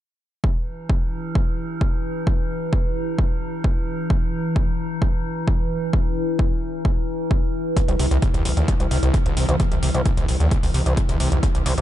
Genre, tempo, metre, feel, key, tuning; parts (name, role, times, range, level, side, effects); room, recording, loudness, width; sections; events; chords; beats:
driving peak-time techno; 131 BPM; 4/4; straight; A4 = 439 Hz
metallic inharmonic drone; drone; 0.7-11.8 s; E3; -27 LUFS; left 1 dB; chorus, built-in reverb, phaser, sidechain pumping
electronic kick drum; drums; 0.4-11.5 s; -20 LUFS; equal
screaming distorted acid line; riff; 7.8-11.8 s; A#1 to C3; -25 LUFS; equal; distortion, chorus, sidechain pumping, ping-pong delay
electronic hi-hat; drums; 7.8-11.8 s; -32 LUFS; left 1 dB; sidechain pumping on hats
gritty driven synth bass; bass; 7.9-11.8 s; C2 to D2; -21 LUFS; equal; sidechain pumping
light reverb; nothing above 11.0 kHz; -19 LUFS; side -13 dB against mid
0.4-11.8 A section
0.4 N.C.; 7.8 Cm
| 0.44 0.90 1.35 1.81 | 2.27 2.73 3.19 3.64 | 4.10 4.56 5.02 5.48 | 5.93 6.39 6.85 7.31 | 7.77 8.22 8.68 9.14 | 9.60 10.06 10.51 10.97 | 11.43